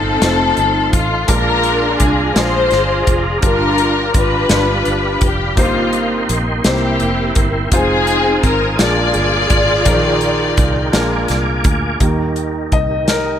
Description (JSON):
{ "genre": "slow gospel", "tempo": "56 BPM (dotted quarters)", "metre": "6/8", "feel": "straight", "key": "Eb major", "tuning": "A4 = 440 Hz", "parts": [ { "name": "warm studio string section", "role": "melody", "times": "0.0-11.3 s", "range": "Bb3 to D5", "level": "-16 LUFS", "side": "left 2 dB", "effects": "none" }, { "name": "warm concert grand piano", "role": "accompaniment", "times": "0.0-13.4 s", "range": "G2 to Eb5", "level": "-21 LUFS", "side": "left 1 dB", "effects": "none" }, { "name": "tonewheel organ", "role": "sustained chords", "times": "0.0-13.4 s", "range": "Eb4 to Eb6", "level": "-22 LUFS", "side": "right 2 dB", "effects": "slow rotary speaker, chorus vibrato" }, { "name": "fingered electric bass", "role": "bass", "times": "0.0-13.4 s", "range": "F1 to Eb2", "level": "-21 LUFS", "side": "equal", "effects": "none" }, { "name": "modern studio drum kit", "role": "drums", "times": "0.2-13.2 s", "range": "hi-hat, kick drum, snare drum", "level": "-18 LUFS", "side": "equal", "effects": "none" } ], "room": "light reverb", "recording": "none", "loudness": "-12 LUFS", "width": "side -9 dB against mid", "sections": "0.0-12.0 A section; 12.0-13.4 B section", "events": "grand piano solo 12.0-13.4", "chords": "0.0 F7; 1.3 Bb7; 3.4 Gm7; 4.5 G7; 5.6 Cm7/G; 6.6 C7; 7.7 Fm7; 8.8 Bb7; 9.9 Eb/Bb; 10.9 Bb7; 12.0 Eb" }